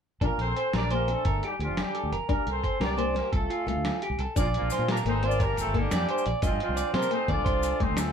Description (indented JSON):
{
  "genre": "highlife guitar band",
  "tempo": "116 BPM (dotted quarters)",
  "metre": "12/8",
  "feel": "straight",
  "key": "Bb major",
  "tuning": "A4 = 440 Hz",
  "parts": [
    { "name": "warm horn section", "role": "melody", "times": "0.2-8.1 s", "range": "F3 to D5", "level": "-32 LUFS", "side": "equal", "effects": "none" },
    { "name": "fingerpicked old ladder-braced acoustic guitar", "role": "accompaniment", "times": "0.2-8.0 s", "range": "D3 to D4", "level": "-34 LUFS", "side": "left 8 dB", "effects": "none" },
    { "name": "electric guitar through a small old amp", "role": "arpeggios", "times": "0.2-8.0 s", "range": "F4 to Eb5", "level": "-31 LUFS", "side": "right 3 dB", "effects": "none" },
    { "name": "fingered electric bass", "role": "bass", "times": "0.2-8.1 s", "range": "F1 to C3", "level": "-30 LUFS", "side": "equal", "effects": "none" },
    { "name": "lo-fi sampler-style drum kit", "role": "drums", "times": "0.2-8.0 s", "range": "hi-hat, kick drum, snare drum", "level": "-30 LUFS", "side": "equal", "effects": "none" },
    { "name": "agogo bells", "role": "percussion", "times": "0.2-8.1 s", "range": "none", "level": "-38 LUFS", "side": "left 6 dB", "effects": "none" },
    { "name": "brilliant trumpet", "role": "second line", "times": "4.4-8.1 s", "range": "Bb3 to F4", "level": "-38 LUFS", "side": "left 4 dB", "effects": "none" },
    { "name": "maracas", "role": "percussion", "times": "4.4-8.1 s", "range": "none", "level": "-41 LUFS", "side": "left 6 dB", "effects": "none" }
  ],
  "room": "moderate studio ambience, RT60 0.5 s",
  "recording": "band playing live in one room",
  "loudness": "-24 LUFS",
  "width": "side -7 dB against mid",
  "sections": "0.2-4.4 A section; 4.4-8.1 B section",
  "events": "none",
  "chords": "0.2 Bb; 1.3 Gmadd9; 2.3 Csus2; 3.3 F/C; 4.4 Bb; 5.4 Gmadd9; 6.4 Cmadd9; 7.5 F/C"
}